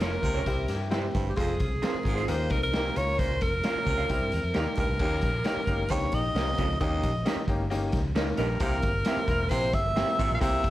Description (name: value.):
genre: uptempo 1960s-style soul.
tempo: 133 BPM.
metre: 4/4.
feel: straight.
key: unclear.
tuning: A4 = 440 Hz.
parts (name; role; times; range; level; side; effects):
clear alto saxophone; melody; 0.0-10.7 s; G4 to F5; -30 LUFS; equal; slapback echo, plate reverb.
bright upright piano; accompaniment; 0.0-10.7 s; G3 to Bb4; -33 LUFS; left 2 dB; plate reverb.
electric guitar through a small old amp; stabs; 0.0-10.3 s; C4 to F5; -36 LUFS; right 6 dB; lush chorus, plate reverb.
vintage muted fingered electric bass; bass; 0.0-10.7 s; E1 to G2; -31 LUFS; equal; none.
raw garage drum kit; drums; 0.0-10.7 s; crash cymbal, hi-hat, kick drum, snare drum; -30 LUFS; equal; none.
clear baritone saxophone; riff; 0.2-10.7 s; Eb2 to C3; -35 LUFS; right 5 dB; none.
vintage hollow-body jazz guitar; riff; 0.5-7.0 s; C4 to C5; -39 LUFS; left 8 dB; none.
room: light reverb.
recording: none.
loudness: -25 LUFS.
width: side -15 dB against mid.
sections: 0.0-5.0 A section; 5.0-10.7 B section.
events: none.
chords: 0.5 C; 1.4 Fm; 2.3 Eb; 3.0 Bbm; 4.1 C; 4.5 Eb; 5.0 Eb7; 8.6 C7.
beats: 0.01 0.47 0.92 | 1.38 1.83 2.28 2.73 | 3.19 3.64 4.09 4.55 | 5.00 5.45 5.90 6.36 | 6.81 7.26 7.71 8.16 | 8.61 9.06 9.51 9.96 | 10.41.